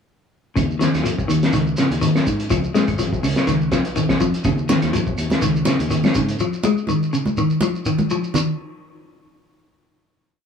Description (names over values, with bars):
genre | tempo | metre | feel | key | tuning
afrobeat | 123 BPM | 4/4 | swing 54% on 16ths | unclear | A4 = 442 Hz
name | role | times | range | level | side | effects
clean electric guitar | arpeggios | 0.6-8.5 s | Db3 to Ab3 | -21 LUFS | left 2 dB | spring reverb
fingered electric bass | bass | 0.6-6.3 s | Ab1 to Ab2 | -23 LUFS | equal | none
cloth-damped thuddy drum kit | drums | 0.6-6.4 s | hi-hat, kick drum, snare drum | -21 LUFS | equal | none
claves | percussion | 0.6-6.2 s | none | -36 LUFS | right 1 dB | none
shekere | percussion | 0.6-8.5 s | none | -29 LUFS | right 3 dB | none
congas | percussion | 4.7-8.5 s | none | -24 LUFS | right 2 dB | none
room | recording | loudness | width
moderate small room reverb, RT60 0.5 s | band playing live in one room | -17 LUFS | side -7 dB against mid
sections
0.6-8.4 groove; 8.4-10.5 final note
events
none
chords
0.6 Dbsus2; 2.5 Db7; 4.5 Dbadd9; 8.4 N.C.